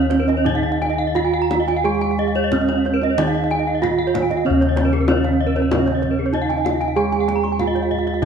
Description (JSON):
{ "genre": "Balinese gamelan", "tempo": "84-96 BPM", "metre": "4/4", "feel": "straight", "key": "Eb slendro", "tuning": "A4 = 440 Hz", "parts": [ { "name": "gamelan-type bronze metallophone", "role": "melody", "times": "0.0-8.2 s", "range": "Db4-45c to Ab4-35c", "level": "-21 LUFS", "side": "right 4 dB", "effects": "none" }, { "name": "gamelan-type bronze metallophone", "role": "accompaniment", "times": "0.0-8.2 s", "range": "Db3-45c to Ab3-35c", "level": "-27 LUFS", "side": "right 4 dB", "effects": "none" }, { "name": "gamelan-type bronze metallophone", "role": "arpeggios", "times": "0.0-8.2 s", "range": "Bb4+25c to Bb5+25c", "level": "-25 LUFS", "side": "right 8 dB", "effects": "none" }, { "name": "gamelan-type bossed gongs", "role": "bass", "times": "0.0-8.2 s", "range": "Eb2 to Ab4-35c", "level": "-23 LUFS", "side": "left 2 dB", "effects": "none" }, { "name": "kendang", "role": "percussion", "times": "0.1-8.2 s", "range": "none", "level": "-27 LUFS", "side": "left 4 dB", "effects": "none" }, { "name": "gamelan-type bronze metallophone", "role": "arpeggios", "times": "0.2-8.2 s", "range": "Ab4-35c to Db6-45c", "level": "-25 LUFS", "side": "left 4 dB", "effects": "none" } ], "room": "moderate recital hall reverb, RT60 1.7 s", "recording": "none", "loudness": "-16 LUFS", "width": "side -7 dB against mid", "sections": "0.0-4.5 A section; 4.5-8.2 B section", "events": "none", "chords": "none", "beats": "0.46 1.16 | 1.84 2.52 3.18 3.82 | 4.46 5.08 5.71 6.34 | 6.97 7.59 8.22" }